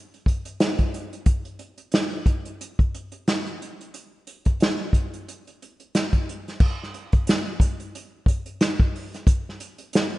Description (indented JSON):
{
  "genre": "R&B",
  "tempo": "90 BPM",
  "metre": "4/4",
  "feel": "swing 58% on 16ths",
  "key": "none",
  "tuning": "none",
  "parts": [
    { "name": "unplugged drum kit", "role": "drums", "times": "0.1-10.1 s", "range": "crash cymbal, hi-hat, kick drum, snare drum", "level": "-21 LUFS", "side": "equal", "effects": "none" }
  ],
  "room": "light reverb",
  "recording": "rough home demo mix, nothing above 10.7 kHz",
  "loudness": "-22 LUFS",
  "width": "side -18 dB against mid",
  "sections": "0.0-6.6 A section; 6.6-10.2 B section",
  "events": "none",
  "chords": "none"
}